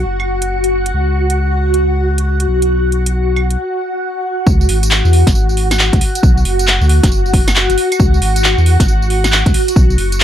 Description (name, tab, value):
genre	UK garage, two-step garage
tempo	136 BPM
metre	4/4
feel	swing 64% on 16ths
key	unclear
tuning	A4 = 441 Hz
part	soft string machine	sustained chords	0.0-10.2 s	F#4 to F#5	-17 LUFS	left 1 dB	phaser, ensemble chorus, sidechain pumping
part	saturated sub bass	bass	0.0-10.2 s	F#1 to E2	-14 LUFS	equal	none
part	house drum kit	drums	0.2-10.2 s	claves, handclaps, hi-hat, snare drum, tambourine	-17 LUFS	right 1 dB	none
part	electronic kick drum	drums	4.5-9.9 s	none	-12 LUFS	equal	none
room	little or no reverb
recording	none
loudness	-11 LUFS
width	side -10 dB against mid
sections	0.0-4.5 A section; 4.5-10.2 B section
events	break 3.6-4.5; drop 4.5-10.2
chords	0.1 N.C.; 0.9 C#sus4; 2.5 B5; 3.6 N.C.; 4.5 C#m; 6.0 Bm; 7.1 N.C.; 8.0 C#m; 9.5 B5